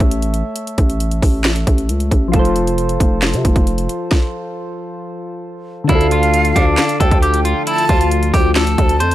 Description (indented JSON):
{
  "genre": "hip hop, trap",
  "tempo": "135 BPM",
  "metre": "4/4",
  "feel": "half-time",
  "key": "D minor",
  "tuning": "A4 = 440 Hz",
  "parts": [
    { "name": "soft electric-piano-like synth keys", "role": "accompaniment", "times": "0.0-9.1 s", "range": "D3 to E5", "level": "-21 LUFS", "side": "left 1 dB", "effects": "chorus" },
    { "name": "growling 808-style bass", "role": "bass", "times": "0.0-9.1 s", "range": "F1 to C3", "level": "-17 LUFS", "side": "equal", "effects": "none" },
    { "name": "trap drum kit", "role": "drums", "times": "0.0-9.1 s", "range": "handclaps, hi-hat, kick drum, snare drum", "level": "-16 LUFS", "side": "equal", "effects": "overdrive" },
    { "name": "electric guitar at the edge of break-up", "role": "melody", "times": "5.9-9.1 s", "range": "D4 to C5", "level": "-19 LUFS", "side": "left 1 dB", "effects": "analog delay" },
    { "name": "breathy jazz flute", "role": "second line", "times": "5.9-9.1 s", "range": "F5 to A5", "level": "-20 LUFS", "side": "right 3 dB", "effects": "analog delay" },
    { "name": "ethereal airy pad", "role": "sustained chords", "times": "6.7-9.1 s", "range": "D3 to F4", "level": "-25 LUFS", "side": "left 3 dB", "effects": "ensemble chorus, built-in reverb" }
  ],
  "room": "little or no reverb",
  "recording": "dry, gritty hardware recording, transformer saturation",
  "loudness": "-13 LUFS",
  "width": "side -14 dB against mid",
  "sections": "0.0-5.9 A section; 5.9-9.1 B section",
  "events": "stop 4.1-5.9",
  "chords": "0.0 A; 2.3 F; 5.9 Dm",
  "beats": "0.11 | 0.56 1.00 1.45 1.89 | 2.34 2.78 3.23 3.67 | 4.11 4.56 5.00 5.45 | 5.89 6.34 6.78 7.22 | 7.67 8.11 8.56 9.00"
}